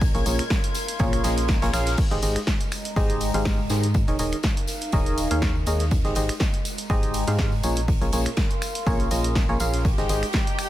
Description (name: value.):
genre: piano house.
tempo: 122 BPM.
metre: 4/4.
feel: swing 54% on 16ths.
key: Ab major.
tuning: A4 = 437 Hz.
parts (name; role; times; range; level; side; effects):
dark chamber string section; sustained chords; 0.0-2.0, 9.8-10.7 s; G4 to Ab6; -34 LUFS; left 2 dB; sidechain pumping.
organ-like FM bass; bass; 0.0-10.2 s; Eb1 to Ab2; -26 LUFS; equal; sidechain pumping.
electronic kick drum; drums; 0.0-10.4 s; none; -24 LUFS; equal; none.
oversized low-tuned drum kit; drums; 0.0-10.7 s; hi-hat, snare drum; -36 LUFS; right 2 dB; high-pass filter on hats, high-pass filter on snare, high-pass filter on room.
tambourine; percussion; 0.0-10.7 s; none; -38 LUFS; left 6 dB; none.
warbly tape-like pad; texture; 0.0-10.7 s; Ab3 to C6; -33 LUFS; equal; chorus, built-in reverb, sidechain pumping.
barking FM electric piano; riff; 0.1-10.3 s; Bb2 to F5; -28 LUFS; equal; chorus, tremolo, sidechain pumping, digital delay.
punchy analog drum machine; drums; 0.1-10.7 s; crash cymbal, finger snaps, hi-hat, snare drum; -30 LUFS; equal; none.
room: little or no reverb.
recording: none.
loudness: -21 LUFS.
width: side -14 dB against mid.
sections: 0.0-2.0 A section; 2.0-10.7 B section.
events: drop 0.0-2.0.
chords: 0.0 Bbm7; 2.0 Abmaj7; 3.9 Eb7sus4; 5.9 Abmaj7; 7.6 Bbm7; 9.8 Abmaj7.